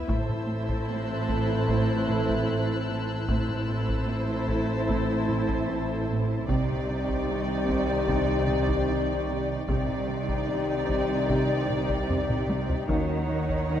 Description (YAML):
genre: cinematic, suspense film score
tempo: 75 BPM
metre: 4/4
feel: straight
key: unclear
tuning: A4 = 440 Hz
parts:
  - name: muted symphonic violin section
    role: second line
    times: 0.0-13.8 s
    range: C5 to D5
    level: -35 LUFS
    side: equal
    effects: none
  - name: muted symphonic viola section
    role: accompaniment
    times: 0.0-13.8 s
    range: Eb4 to E4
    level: -35 LUFS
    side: right 1 dB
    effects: none
  - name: muted symphonic violin section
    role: melody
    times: 0.1-13.8 s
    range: F#5 to A5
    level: -40 LUFS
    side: left 2 dB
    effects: none
  - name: mellow French horn section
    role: sustained chords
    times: 0.1-13.2 s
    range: C4 to D5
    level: -32 LUFS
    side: left 6 dB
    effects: none
  - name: warm trombone section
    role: sustained chords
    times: 0.1-13.2 s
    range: Eb3 to C4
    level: -35 LUFS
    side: right 3 dB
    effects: none
  - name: muted symphonic cello section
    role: riff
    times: 0.1-13.8 s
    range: A2 to C4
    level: -32 LUFS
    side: right 2 dB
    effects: none
  - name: muted chamber cello section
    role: bass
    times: 0.1-13.8 s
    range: A2 to D#3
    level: -34 LUFS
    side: right 2 dB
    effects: none
  - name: muted symphonic double bass section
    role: bass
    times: 0.1-13.8 s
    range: A1 to D#2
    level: -32 LUFS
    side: right 2 dB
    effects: none
  - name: solo taiko drums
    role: drums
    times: 0.1-13.8 s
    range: none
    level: -33 LUFS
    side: equal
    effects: none
  - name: muted chamber violin section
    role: texture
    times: 0.1-12.5 s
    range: G5 to G6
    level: -42 LUFS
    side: left 6 dB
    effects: none
room: moderate scoring stage reverb, RT60 1.6 s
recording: dark, warm production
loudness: -24 LUFS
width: side -10 dB against mid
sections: 0.1-13.8 A section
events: drum fill 12.1-12.9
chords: 0.1 Am; 6.5 Cmadd9; 12.9 D#m7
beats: | 0.09 0.89 1.69 2.49 | 3.29 4.09 4.89 5.69 | 6.49 7.29 8.09 8.89 | 9.69 10.49 11.29 12.09 | 12.89 13.69